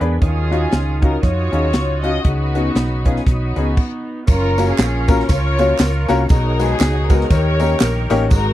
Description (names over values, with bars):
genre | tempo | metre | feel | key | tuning
uptempo gospel | 118 BPM | 4/4 | swing 59% on 8ths | F# major | A4 = 440 Hz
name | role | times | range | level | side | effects
warm studio string section | melody | 0.0-8.5 s | B3 to D#5 | -22 LUFS | left 1 dB | none
clear baby grand piano | accompaniment | 0.0-8.5 s | G#2 to C#5 | -21 LUFS | left 3 dB | none
dark French horn section | sustained chords | 0.0-3.8 s | D#3 to D#4 | -32 LUFS | right 5 dB | none
tonewheel organ | sustained chords | 0.0-8.5 s | G#4 to D#6 | -29 LUFS | right 3 dB | fast rotary speaker, chorus vibrato
hollow-body short-scale fingered electric bass | bass | 0.0-8.5 s | F#1 to E#2 | -19 LUFS | equal | none
crisp fusion drum kit | drums | 0.0-8.4 s | crash cymbal, hi-hat, kick drum, ride cymbal, snare drum | -16 LUFS | equal | none
tambourine and handclaps | percussion | 4.3-8.4 s | none | -31 LUFS | right 8 dB | none
room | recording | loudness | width
little or no reverb | dry, close 1970s-style studio recording | -14 LUFS | side -14 dB against mid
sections
0.0-4.3 A section; 4.3-8.5 B section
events
stop 3.8-4.3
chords
0.2 D#m9; 2.2 C#9sus4; 4.3 F#maj7; 6.3 B6; 7.3 D#7